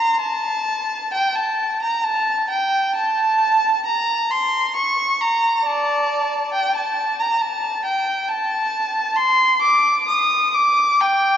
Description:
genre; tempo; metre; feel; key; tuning
classical, baroque-style suite movement for unaccompanied violin; 66 BPM; 3/4; rubato; unclear; A4 = 437 Hz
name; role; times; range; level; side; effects
clear violin; solo; 0.0-11.4 s; D5 to Eb6; -17 LUFS; equal; none
room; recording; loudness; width
wet church reverb, RT60 3.6 s; dark, warm production, nothing above 7.8 kHz; -17 LUFS; side -9 dB against mid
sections
0.0-11.4 A section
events
none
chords
none

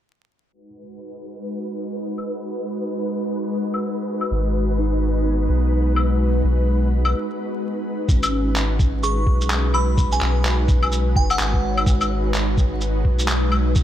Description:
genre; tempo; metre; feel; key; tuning
future garage; 127 BPM; 4/4; swing 60% on 16ths; unclear; A4 = 440 Hz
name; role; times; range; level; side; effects
ethereal airy pad; sustained chords; 0.8-13.8 s; G#3 to B4; -25 LUFS; equal; ensemble chorus, built-in reverb, sidechain pumping
flickering grainy texture; texture; 1.0-7.1 s; B4; -35 LUFS; right 2 dB; built-in reverb
electronic claves, shaker and handclaps; drums; 2.2-13.8 s; none; -25 LUFS; left 1 dB; none
soft dub sub bass; bass; 4.3-13.8 s; F#1 to B1; -20 LUFS; equal; sidechain pumping
bell-like tine electric piano; accompaniment; 4.8-13.8 s; B3 to C#5; -30 LUFS; equal; ensemble chorus, sidechain pumping, low-pass filter, tape echo
electronic kick drum; drums; 8.1-13.8 s; none; -19 LUFS; equal; none
glassy synth bell; melody; 9.0-11.8 s; F#5 to C#6; -28 LUFS; right 2 dB; chorus, tape echo
room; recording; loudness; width
light reverb, digital ambience; vinyl crackle, low-pass filter; -18 LUFS; side -11 dB against mid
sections
0.5-8.1 A section; 8.1-13.8 B section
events
filter sweep 0.5-8.1; break 7.1-8.1; filter sweep on tine electric piano 8.1-13.8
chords
0.5 G#m7

